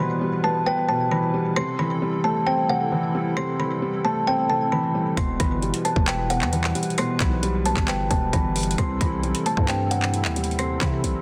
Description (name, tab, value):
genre	hip hop, trap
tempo	133 BPM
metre	4/4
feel	half-time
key	E minor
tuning	A4 = 440 Hz
part	kalimba	melody	0.0-11.2 s	F#5 to C6	-28 LUFS	equal	low-pass filter, tape echo
part	felt-muted upright piano	accompaniment	0.0-11.2 s	B2 to B4	-28 LUFS	equal	low-pass filter
part	hollow soft pad	sustained chords	0.0-11.2 s	G3 to B4	-36 LUFS	equal	ensemble chorus
part	growling 808-style bass	bass	5.2-11.1 s	E1 to C3	-29 LUFS	equal	none
part	trap drum kit	drums	5.2-11.1 s	handclaps, hi-hat, kick drum	-28 LUFS	equal	none
room	light reverb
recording	dense, heavily limited modern master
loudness	-23 LUFS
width	mono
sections	0.0-11.2 A section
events	none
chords	0.0 Em; 1.6 Am7; 5.2 Em; 8.8 C6